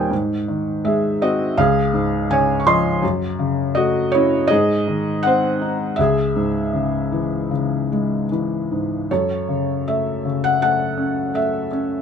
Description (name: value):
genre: classical, lyrical solo piano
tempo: 81 BPM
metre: 4/4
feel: rubato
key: C# harmonic minor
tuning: A4 = 440 Hz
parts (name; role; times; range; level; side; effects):
- felt-muted upright piano; solo; 0.0-12.0 s; C#2 to C#6; -17 LUFS; left 1 dB; none
room: moderate studio reverb, RT60 0.6 s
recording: none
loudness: -17 LUFS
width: side -7 dB against mid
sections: 0.0-9.1 A section; 9.1-12.0 B section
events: none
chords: 0.1 G#; 1.6 C#; 3.0 F#m; 4.5 G#; 6.0 C#m; 9.1 F#m